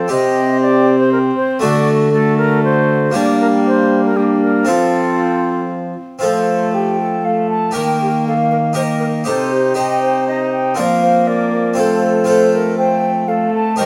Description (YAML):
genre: classical, renaissance-style consort dance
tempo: 118 BPM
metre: 3/4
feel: straight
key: unclear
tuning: A4 = 440 Hz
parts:
  - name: mellow tenor recorder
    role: second line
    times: 0.0-13.9 s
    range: D4 to Eb5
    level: -23 LUFS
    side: equal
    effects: none
  - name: harpsichord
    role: accompaniment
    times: 0.0-13.9 s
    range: C3 to C5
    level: -22 LUFS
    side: equal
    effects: none
  - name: warm viola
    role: accompaniment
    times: 0.0-13.9 s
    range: G3 to Eb4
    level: -22 LUFS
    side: equal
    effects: none
  - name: mellow trombone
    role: bass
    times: 0.0-13.9 s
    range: C3 to G3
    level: -23 LUFS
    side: equal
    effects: none
  - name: bright baroque flute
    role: melody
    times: 0.1-13.9 s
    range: G4 to A5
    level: -21 LUFS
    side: equal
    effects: none
room: moderate stone room reverb, RT60 1.1 s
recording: none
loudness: -15 LUFS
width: mono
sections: 0.0-6.2 A section; 6.2-13.9 B section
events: none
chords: 0.1 Cm; 1.6 D; 3.1 Gm; 4.7 F; 7.8 Eb; 9.3 Cm; 10.8 Fsus4; 11.8 F